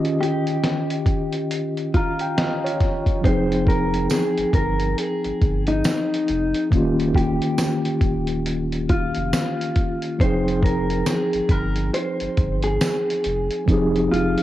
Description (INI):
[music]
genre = lo-fi hip hop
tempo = 69 BPM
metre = 4/4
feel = swing 60% on 16ths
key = F minor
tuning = A4 = 440 Hz
[part]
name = mellow tine electric piano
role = accompaniment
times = 0.0-14.4 s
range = Eb3 to Bb5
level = -23 LUFS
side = equal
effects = medium stereo tremolo
[part]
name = lo-fi sampler-style drum kit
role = drums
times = 0.0-14.4 s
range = hi-hat, kick drum, snare drum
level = -22 LUFS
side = equal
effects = cassette tape
[part]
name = mellow electric guitar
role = melody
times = 0.2-14.4 s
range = Eb4 to C5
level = -25 LUFS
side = left 1 dB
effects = tape echo
[part]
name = warm sub bass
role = bass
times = 3.2-14.4 s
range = Eb1 to G1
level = -27 LUFS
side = equal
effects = transformer saturation
[part]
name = tambourine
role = percussion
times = 4.1-13.1 s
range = none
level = -35 LUFS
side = right 9 dB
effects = none
[sound]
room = light reverb, digital ambience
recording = home recording on cassette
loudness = -19 LUFS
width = side -14 dB against mid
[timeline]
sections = 0.0-14.4 A section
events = break 0.0-3.2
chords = 0.0 Eb9; 3.2 Fm9; 6.7 Eb9; 10.2 Fm9